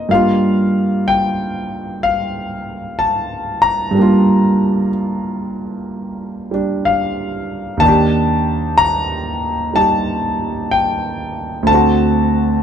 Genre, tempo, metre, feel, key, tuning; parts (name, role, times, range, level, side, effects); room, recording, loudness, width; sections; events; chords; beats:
solo jazz; 62 BPM; 4/4; swing 66% on 8ths; G minor; A4 = 440 Hz
warm concert grand piano; solo; 0.0-12.6 s; D2 to Bb5; -14 LUFS; equal
moderate studio reverb, RT60 0.9 s; -14 LUFS; side -8 dB against mid
0.0-12.6 A section
0.1 Gm7; 7.8 Ebmaj7; 11.7 D7
| 0.10 1.06 2.03 2.99 | 3.96 4.92 5.89 6.85 | 7.82 8.79 9.75 10.71 | 11.68